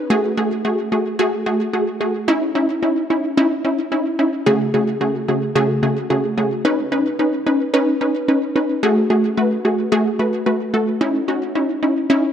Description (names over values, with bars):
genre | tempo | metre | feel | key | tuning
pop | 110 BPM | 4/4 | straight | F# dorian | A4 = 439 Hz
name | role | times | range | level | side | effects
wide unison pluck | solo | 0.1-12.3 s | C#3 to B4 | -16 LUFS | equal | digital delay
room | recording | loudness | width
moderate plate reverb, RT60 3.7 s | none | -16 LUFS | side -9 dB against mid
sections
0.1-12.3 A section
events
none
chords
0.1 F#madd9; 2.3 C#madd9; 4.5 F#madd9/C#; 6.6 Badd9; 8.8 F#madd9; 11.0 C#madd9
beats
| 0.10 0.65 1.19 1.74 | 2.28 2.83 3.37 3.92 | 4.46 5.01 5.55 6.10 | 6.65 7.19 7.74 8.28 | 8.83 9.37 9.92 10.46 | 11.01 11.55 12.10